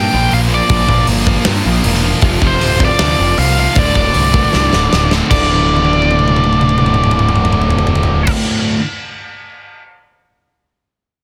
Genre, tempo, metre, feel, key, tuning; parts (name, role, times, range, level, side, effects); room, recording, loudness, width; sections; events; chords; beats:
hard rock; 156 BPM; 4/4; straight; D minor; A4 = 441 Hz
biting lead guitar; melody; 0.0-8.3 s; C5 to G5; -18 LUFS; equal; overdrive, digital delay
biting overdriven guitar; riff; 0.0-8.8 s; D2 to Bb3; -22 LUFS; equal
cranked stack guitar; riff; 0.0-8.8 s; D2 to Bb3; -24 LUFS; equal
heavy high-gain guitar; riff; 0.0-8.8 s; D2 to Bb3; -25 LUFS; equal
fuzz picked electric bass; bass; 0.0-8.3 s; D1 to G2; -19 LUFS; equal; overdrive
big rock drum kit; drums; 0.3-9.8 s; crash cymbal, hi-hat, kick drum, snare drum, toms; -19 LUFS; equal; soft clipping on kick
little or no reverb; dense, heavily limited modern master; -13 LUFS; mono
0.0-5.3 A section; 5.3-8.4 B section
drum fill 4.5-5.3, 5.5-8.3
0.0 Bb; 2.2 F5; 3.8 D5
0.31 | 0.69 1.07 1.46 1.84 | 2.23 2.61 3.00 3.38 | 3.76 4.15 4.53 4.91 | 5.30 5.68 6.07 6.45 | 6.83 7.22 7.60 7.98